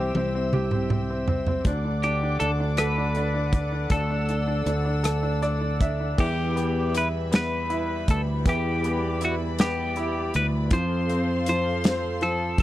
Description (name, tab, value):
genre	six-eight pop ballad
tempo	53 BPM (dotted quarters)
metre	6/8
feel	straight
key	E minor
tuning	A4 = 439 Hz
part	twelve-string electric guitar	melody	0.0-12.6 s	F#4 to C5	-29 LUFS	left 1 dB	warbly pitch drift
part	bright grand piano	accompaniment	0.0-12.6 s	E3 to E5	-29 LUFS	equal	none
part	warm studio string section	sustained chords	0.0-12.6 s	G3 to E6	-34 LUFS	left 2 dB	none
part	fretless electric bass	bass	0.0-12.6 s	F1 to F2	-27 LUFS	equal	analog chorus
part	modern studio drum kit	drums	0.1-12.6 s	crash cymbal, hi-hat, kick drum, rim click, snare drum, toms	-24 LUFS	equal	none
room	studio reverb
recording	dry, close 1970s-style studio recording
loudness	-22 LUFS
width	side -14 dB against mid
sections	0.0-6.2 A section; 6.2-12.6 B section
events	drum fill 0.0-1.7; grand piano fill 5.0-6.2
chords	0.0 C; 1.7 D; 6.2 Em; 10.7 F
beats	0.53 | 1.66 2.78 | 3.91 5.04 | 6.18 7.33 | 8.46 9.59 | 10.71 11.84